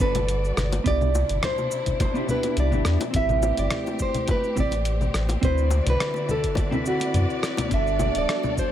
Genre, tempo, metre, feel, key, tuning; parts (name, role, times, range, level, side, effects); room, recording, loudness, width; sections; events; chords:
sunset chillout; 105 BPM; 4/4; swing 54% on 16ths; A dorian; A4 = 440 Hz
nylon-string guitar; melody; 0.0-8.7 s; F#4 to E5; -26 LUFS; right 2 dB; ping-pong delay
mellow electric guitar; accompaniment; 0.0-8.7 s; B3 to B4; -29 LUFS; moving between left 5 dB and right 9 dB; auto-pan
dark studio string section; sustained chords; 0.0-8.7 s; B2 to D5; -32 LUFS; right 1 dB; vintage 12-bit sampler grit
warm sub bass; bass; 0.0-8.3 s; D1 to F#2; -23 LUFS; equal
electronic kick drum; drums; 0.0-8.7 s; -26 LUFS; equal
dusty soul sampler-style drum kit; drums; 0.1-8.7 s; congas, hi-hat, rim click, shaker; -30 LUFS; left 2 dB
bongos; percussion; 0.2-8.5 s; -35 LUFS; left 4 dB
light reverb, small room ambience; -21 LUFS; side -10 dB against mid
0.0-8.7 A section
0.0 Gmaj9; 0.9 Cmaj9; 3.1 Am9; 5.4 D13; 7.7 Gmaj9